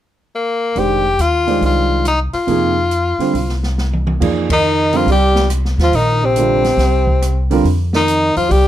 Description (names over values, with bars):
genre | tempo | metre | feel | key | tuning
modal jazz | 140 BPM | 4/4 | swing 66% on 8ths | F dorian | A4 = 438 Hz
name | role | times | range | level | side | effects
edgy tenor saxophone | melody | 0.4-8.7 s | Bb3 to G4 | -16 LUFS | left 3 dB | none
warm grand piano | accompaniment | 0.8-7.6 s | C3 to D5 | -18 LUFS | right 5 dB | none
upright bass | bass | 0.8-8.7 s | F1 to F2 | -17 LUFS | equal | none
open jazz drum kit | drums | 0.8-8.6 s | crash cymbal, hi-hat, kick drum, ride cymbal, rim click, snare drum, toms | -24 LUFS | equal | none
breathy tenor saxophone | second line | 4.5-8.7 s | C3 to G3 | -18 LUFS | right 4 dB | none
room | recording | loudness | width
light reverb | dark, warm production | -13 LUFS | side -12 dB against mid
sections
0.8-4.2 A section; 4.2-8.7 B section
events
drum fill 3.8-4.2; band accent 4.4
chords
0.0 N.C.; 0.8 F7sus2; 4.2 F13sus4